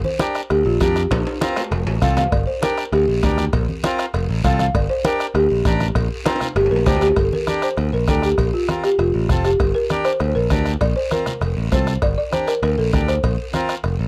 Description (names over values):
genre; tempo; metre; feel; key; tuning
latin, cumbia; 198 BPM; 4/4; straight; G minor; A4 = 444 Hz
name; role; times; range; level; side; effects
folk marimba with medium mallets; melody; 0.0-13.6 s; F4 to F5; -23 LUFS; equal; none
congas; percussion; 0.0-13.7 s; none; -28 LUFS; equal; none
accordion; accompaniment; 0.2-13.8 s; C4 to Bb4; -26 LUFS; equal; none
bombo; percussion; 0.2-14.0 s; none; -26 LUFS; equal; none
cowbell and timbales; percussion; 0.2-14.0 s; none; -32 LUFS; equal; none
guiro; percussion; 0.2-14.1 s; none; -38 LUFS; equal; none
modern bright picked electric bass; bass; 0.5-14.1 s; F1 to F2; -23 LUFS; equal; none
room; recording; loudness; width
light reverb; dry, close 1970s-style studio recording; -19 LUFS; mono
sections
0.0-7.2 A section; 7.2-14.1 B section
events
marimba solo 0.0-7.2; drum fill 1.1-2.3, 6.3-7.2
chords
0.0 Gm; 1.1 Bbsus2; 1.7 F; 2.3 Gm; 3.5 Bbsus2; 4.1 F; 4.7 Gmadd9; 6.0 Bbsus2; 6.6 Gm; 8.4 Bbsus2; 9.0 F; 9.6 Gm; 10.8 Bbsus2; 11.4 F; 12.0 Gmadd9; 13.2 Bbsus2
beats
0.20 0.50 0.81 | 1.11 1.41 1.72 2.02 | 2.32 2.63 2.93 3.23 | 3.54 3.84 4.14 4.45 | 4.75 5.05 5.35 5.66 | 5.96 6.26 6.57 6.87 | 7.17 7.47 7.78 8.08 | 8.38 8.69 8.99 9.29 | 9.60 9.90 10.20 10.51 | 10.81 11.11 11.42 11.72 | 12.02 12.33 12.63 12.93 | 13.23 13.54 13.84